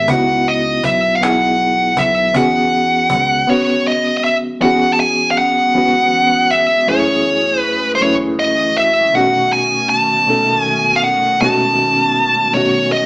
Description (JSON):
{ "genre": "slow six-eight R&B", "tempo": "53 BPM (dotted quarters)", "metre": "6/8", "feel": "straight", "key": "unclear", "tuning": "A4 = 441 Hz", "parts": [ { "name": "high-gain lead guitar", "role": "melody", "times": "0.0-13.1 s", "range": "B#4 to A5", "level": "-13 LUFS", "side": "equal", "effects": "distortion" }, { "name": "reed electric piano", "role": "accompaniment", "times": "0.0-13.1 s", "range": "F#2 to B4", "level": "-18 LUFS", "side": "equal", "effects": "fast tremolo" }, { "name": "fingered electric bass", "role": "bass", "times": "0.0-3.4 s", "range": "B1 to E2", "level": "-25 LUFS", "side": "equal", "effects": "none" }, { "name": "cajon", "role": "drums", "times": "0.1-3.3 s", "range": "none", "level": "-24 LUFS", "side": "equal", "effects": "none" }, { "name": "hollow soft pad", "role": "sustained chords", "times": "4.6-13.1 s", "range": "D#3 to G#4", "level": "-24 LUFS", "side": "equal", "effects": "ensemble chorus" } ], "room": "moderate large studio reverb, RT60 1.0 s", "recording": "band playing live in one room, small speaker sound", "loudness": "-11 LUFS", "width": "side -27 dB against mid", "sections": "0.0-4.6 A section; 4.6-13.1 B section", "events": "none", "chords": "0.1 C#m11; 2.3 E69; 6.9 F#m9; 9.1 B9", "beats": "| 0.08 1.21 | 2.35 3.48 | 4.61 5.74 | 6.87 8.01 | 9.14 10.27 | 11.40 12.53" }